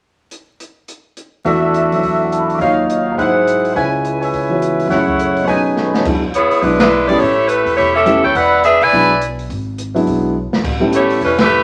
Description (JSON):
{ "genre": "jazz, big band swing", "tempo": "209 BPM", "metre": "4/4", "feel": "swing 61% on 8ths", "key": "E mixolydian", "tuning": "A4 = 440 Hz", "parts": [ { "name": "open jazz drum kit", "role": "drums", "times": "0.3-11.4 s", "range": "crash cymbal, hi-hat, kick drum, ride cymbal, snare drum", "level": "-24 LUFS", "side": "equal", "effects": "none" }, { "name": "dark concert grand piano", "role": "accompaniment", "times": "1.4-11.2 s", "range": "C#2 to D6", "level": "-19 LUFS", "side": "equal", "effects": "none" }, { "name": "warm trumpet section", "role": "stabs", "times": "1.5-6.1 s", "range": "D4 to C#6", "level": "-19 LUFS", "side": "equal", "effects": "none" }, { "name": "upright bass", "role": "bass", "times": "6.1-11.6 s", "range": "E1 to E2", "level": "-29 LUFS", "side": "equal", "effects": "none" }, { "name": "warm saxophone section", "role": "melody", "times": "6.4-11.6 s", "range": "G3 to G#5", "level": "-14 LUFS", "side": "equal", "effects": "none" } ], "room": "wet studio reverb, RT60 0.8 s", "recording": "vinyl crackle", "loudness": "-15 LUFS", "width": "mono", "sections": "0.3-1.5 A section; 1.5-6.1 B section; 6.1-11.6 C section", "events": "drum fill 5.8, 10.4; band accent 6.8, 11.4", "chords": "0.3 N.C.; 1.5 E9sus4; 2.6 D#m9; 3.2 G#7b13; 3.8 C#m7; 4.9 F#m7; 5.5 B13; 6.1 E7; 7.2 A7; 8.3 E7; 10.6 A7", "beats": "| 0.31 0.60 0.89 1.17 | 1.46 1.75 2.03 2.32 | 2.61 2.90 3.18 3.47 | 3.76 4.04 4.33 4.62 | 4.91 5.19 5.48 5.77 | 6.05 6.34 6.63 6.91 | 7.20 7.49 7.77 8.06 | 8.35 8.63 8.92 9.21 | 9.49 9.78 10.07 10.35 | 10.64 10.93 11.21 11.50" }